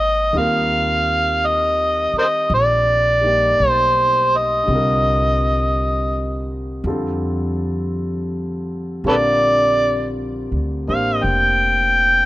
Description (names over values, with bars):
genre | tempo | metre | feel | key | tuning
jazz ballad | 55 BPM | 4/4 | swing 66% on 8ths | unclear | A4 = 440 Hz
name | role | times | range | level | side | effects
overdriven harmonica | melody | 0.0-12.3 s | A4 to G5 | -16 LUFS | equal | none
warm concert grand piano | accompaniment | 0.0-12.3 s | Bb2 to Db5 | -25 LUFS | left 1 dB | none
upright bass | bass | 0.0-12.3 s | F1 to F2 | -23 LUFS | equal | none
room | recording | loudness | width
small room ambience | rough home demo mix | -16 LUFS | side -16 dB against mid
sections
0.0-12.3 A section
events
none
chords
0.3 Eb69; 4.7 Cm7; 6.8 F69; 9.0 Bb6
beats
| 0.34 1.42 2.50 3.59 | 4.68 5.76 6.85 7.95 | 9.05 10.14 11.23